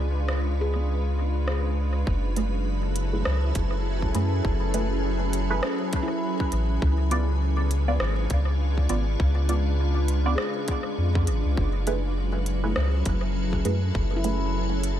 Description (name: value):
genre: ambient dub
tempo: 101 BPM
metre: 4/4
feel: swing 58% on 16ths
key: F# minor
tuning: A4 = 441 Hz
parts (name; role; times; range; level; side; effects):
- soft additive organ-like pad; sustained chords; 0.0-15.0 s; C#3 to B4; -30 LUFS; equal; ensemble chorus, built-in reverb
- filtered dub chord stab; stabs; 0.0-14.4 s; A3 to D5; -33 LUFS; right 3 dB; phaser, vintage 12-bit sampler grit, dub echo
- soft dub sub bass; bass; 0.0-15.0 s; F#1 to F#2; -24 LUFS; equal; none
- organic electronic drum kit; drums; 0.3-15.0 s; hi-hat, rim click; -34 LUFS; equal; dub echo
- handpan; arpeggios; 0.6-2.1, 6.0-15.0 s; E4 to G#4; -37 LUFS; left 3 dB; tape echo
- electronic kick drum; drums; 2.1-14.1 s; none; -29 LUFS; equal; none
room: little or no reverb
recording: none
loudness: -23 LUFS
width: side -11 dB against mid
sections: 0.0-2.1 A section; 2.1-15.0 B section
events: none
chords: 0.0 C#7b9; 2.1 F#m11; 6.8 C#7b9; 11.6 F#m11